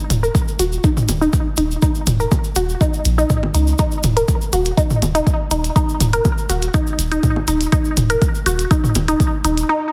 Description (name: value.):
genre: minimal techno.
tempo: 122 BPM.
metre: 4/4.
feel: straight.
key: Eb minor.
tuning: A4 = 438 Hz.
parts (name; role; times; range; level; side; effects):
punchy sub bass; bass; 0.1-9.6 s; Eb1 to Db2; -23 LUFS; equal; tube saturation, sidechain pumping.
electronic hi-hat; drums; 0.1-9.7 s; none; -28 LUFS; equal; overdrive.
cabasa; percussion; 0.1-9.7 s; none; -31 LUFS; equal; none.
electronic toms and bongos; percussion; 0.1-9.1 s; none; -23 LUFS; equal; tape echo.
resonant blip pluck; riff; 0.2-9.7 s; Eb4 to Bb4; -23 LUFS; equal; phaser, sidechain pumping, digital delay.
electronic kick drum; drums; 0.3-9.3 s; none; -20 LUFS; equal; overdrive.
room: light reverb.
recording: heavily compressed radio sound, multiband compression.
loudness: -17 LUFS.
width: mono.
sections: 0.0-9.9 A section.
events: filter sweep on synth pluck 0.0-9.9.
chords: 0.0 Eb5.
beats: 0.35 0.84 1.33 | 1.82 2.32 2.81 3.30 | 3.79 4.28 4.78 5.27 | 5.76 6.25 6.74 7.24 | 7.73 8.22 8.71 9.20 | 9.69.